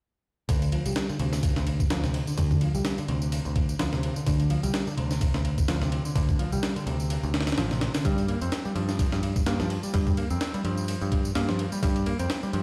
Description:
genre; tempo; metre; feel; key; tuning
breakbeat, breaks; 127 BPM; 4/4; swing 56% on 16ths; D minor; A4 = 441 Hz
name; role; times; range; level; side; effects
modern bright picked electric bass; riff; 0.5-12.6 s; C3 to C4; -32 LUFS; equal; tube saturation, low-pass filter, delay
picked electric bass; bass; 0.5-12.6 s; A1 to G2; -31 LUFS; equal; none
breakbeat sampler-style drum kit; drums; 0.5-12.6 s; kick drum, ride cymbal, snare drum; -31 LUFS; equal; none
tambourine; drums; 0.5-12.5 s; none; -46 LUFS; equal; none
room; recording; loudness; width
light reverb, digital ambience; played on a big sound system in a bare room, stone room reverb; -27 LUFS; mono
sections
0.5-12.6 A section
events
filter sweep on picked electric bass 0.5-12.6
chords
0.5 Dm7; 8.0 Gm

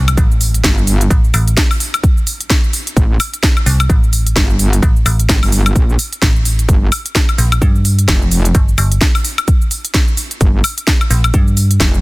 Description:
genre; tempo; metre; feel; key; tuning
bass house; 129 BPM; 4/4; swing 59% on 16ths; A phrygian; A4 = 440 Hz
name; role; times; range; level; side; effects
metallic FM bass; bass; 0.0-11.8 s; G1 to G2; -13 LUFS; equal; overdrive, sidechain pumping
impact; sound effects; 0.0-1.1 s; none; -32 LUFS; equal; none
house drum kit; drums; 0.1-12.0 s; hi-hat, shaker, snare drum, woodblock; -17 LUFS; left 1 dB; none
electronic kick drum; drums; 0.2-11.9 s; none; -13 LUFS; equal; none
metallic wobble bass; bass; 0.6-12.0 s; F1 to Bb1; -14 LUFS; equal; chorus, tube saturation, sidechain pumping
room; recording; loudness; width
little or no reverb; dense, heavily limited modern master; -10 LUFS; side -22 dB against mid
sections
0.0-12.0 A section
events
impact 0.0-1.1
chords
none

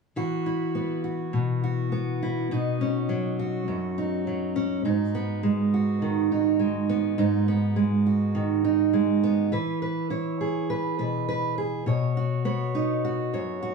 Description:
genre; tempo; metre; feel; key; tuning
folk; 102 BPM; 4/4; straight; unclear; A4 = 438 Hz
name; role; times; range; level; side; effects
fingerpicked steel-string acoustic guitar; solo; 0.2-13.7 s; F#2 to C#5; -23 LUFS; right 2 dB; none
room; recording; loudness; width
moderate large studio reverb, RT60 1.0 s; none; -23 LUFS; side -4 dB against mid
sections
0.2-9.5 A section; 9.5-13.7 B section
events
none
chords
0.2 Esus2; 2.5 Badd9; 4.8 G#m7; 9.5 E; 11.9 Badd9

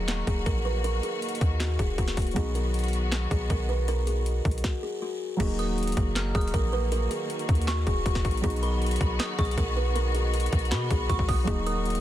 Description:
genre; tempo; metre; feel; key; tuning
hip hop, trap; 158 BPM; 4/4; half-time; Eb minor; A4 = 437 Hz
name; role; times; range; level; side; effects
buzzing kalimba; melody; 0.0-12.0 s; Gb4 to Cb5; -32 LUFS; equal; none
dark concert grand piano; accompaniment; 0.0-12.0 s; Gb3 to Gb4; -36 LUFS; right 2 dB; none
rich symphonic string section; sustained chords; 0.0-12.0 s; Eb3 to Gb4; -35 LUFS; left 3 dB; none
warm 808-style bass; bass; 0.0-12.0 s; Eb1 to B2; -28 LUFS; equal; none
trap drum kit; drums; 0.1-12.0 s; crash cymbal, handclaps, hi-hat, kick drum, snare drum; -28 LUFS; equal; overdrive
dark detuned synth bell; second line; 5.6-12.0 s; B5 to F6; -36 LUFS; right 2 dB; chorus, phaser, ping-pong delay
room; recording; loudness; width
small room ambience; dense, heavily limited modern master; -24 LUFS; side -12 dB against mid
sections
0.0-5.4 A section; 5.4-12.0 B section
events
stop 4.6-5.4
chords
0.0 Ebm; 2.4 B; 5.4 Ebm; 8.4 B; 11.5 Ebm

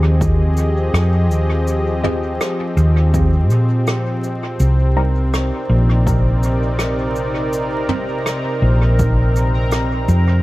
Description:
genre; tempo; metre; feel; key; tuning
ambient dub; 82 BPM; 4/4; swing 57% on 16ths; C minor; A4 = 440 Hz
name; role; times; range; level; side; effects
warm analog pad; sustained chords; 0.0-10.4 s; C3 to Eb5; -22 LUFS; left 1 dB; chorus
hollow-body short-scale fingered electric bass; bass; 0.0-10.4 s; Bb1 to Bb2; -15 LUFS; equal; none
electronic kick drum; drums; 0.2-9.2 s; none; -20 LUFS; equal; overdrive
soft brush drum kit; drums; 0.2-10.3 s; cabasa, rim click, toms; -26 LUFS; equal; dub echo
filtered dub chord stab; stabs; 2.0-8.1 s; G3 to Eb5; -27 LUFS; right 1 dB; phaser, dub echo
bubbling stepped-filter texture; texture; 4.6-10.4 s; Bb4 to Bb5; -27 LUFS; right 3 dB; chorus, built-in reverb
room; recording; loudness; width
light reverb; echo-heavy mix, vinyl crackle; -14 LUFS; side -18 dB against mid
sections
0.0-10.4 A section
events
none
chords
0.0 Fm7; 4.6 Cm7

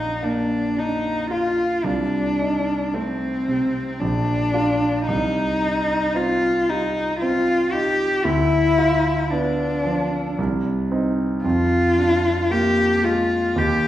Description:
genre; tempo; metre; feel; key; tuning
classical, romantic duo for cello and grand piano; 56 BPM; 3/4; rubato; Bb major; A4 = 440 Hz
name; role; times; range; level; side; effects
rich cello; melody; 0.0-13.9 s; C4 to G4; -20 LUFS; left 1 dB; none
clear concert grand piano; accompaniment; 0.0-13.9 s; Bb1 to F4; -22 LUFS; right 1 dB; none
room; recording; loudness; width
wet recital hall reverb, RT60 1.3 s; heard from further back in the room; -18 LUFS; side -12 dB against mid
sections
0.0-13.9 A section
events
none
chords
0.0 Bb; 1.8 Adim/C; 4.0 Bb; 5.1 Cm; 8.3 Bdim/D; 10.4 Cm; 11.4 Bb7/F

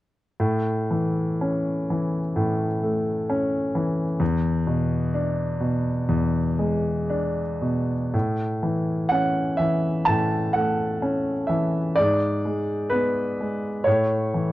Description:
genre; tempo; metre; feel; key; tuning
classical, romantic nocturne for solo piano; 62 BPM; 4/4; uneven beats, rubato; A major; A4 = 440 Hz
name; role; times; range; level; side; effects
warm grand piano; solo; 0.4-14.5 s; E2 to A5; -21 LUFS; equal; none
room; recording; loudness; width
moderate studio reverb, RT60 0.8 s; worn, warbling old tape, cassette tape, warbly pitch drift; -21 LUFS; side -16 dB against mid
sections
0.4-8.1 A section; 8.1-14.5 B section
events
none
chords
0.4 A; 4.2 E7; 8.1 A; 12.0 G#dim; 13.9 A

